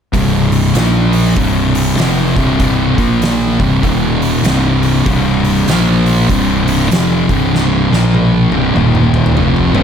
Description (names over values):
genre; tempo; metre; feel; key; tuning
stoner and doom metal; 97 BPM; 4/4; swing 62% on 8ths; C minor; A4 = 440 Hz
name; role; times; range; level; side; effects
thick fuzz guitar; riff; 0.1-9.8 s; C2 to Bb3; -15 LUFS; left 8 dB; distortion
thick fuzz guitar; riff; 0.1-9.8 s; C2 to Bb3; -15 LUFS; right 8 dB; distortion
fuzz fingered electric bass; bass; 0.1-9.8 s; C1 to Bb1; -19 LUFS; equal; overdrive
oversized low-tuned drum kit; drums; 0.1-9.8 s; hi-hat, kick drum, snare drum, toms; -17 LUFS; equal; none
room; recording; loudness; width
small room reverb; none; -10 LUFS; side -8 dB against mid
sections
0.1-9.8 A section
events
drum fill 7.5-9.8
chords
0.1 C5; 0.7 Bb5; 1.4 C5; 2.9 Bb5; 3.5 C5; 3.8 Eb5; 4.4 C5; 5.7 Bb5; 6.3 C5; 7.8 Bb5; 8.4 C5; 8.8 Eb5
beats
| 0.13 0.75 1.36 1.98 | 2.60 3.22 3.83 4.45 | 5.07 5.68 6.30 6.91 | 7.53 8.14 8.76 9.37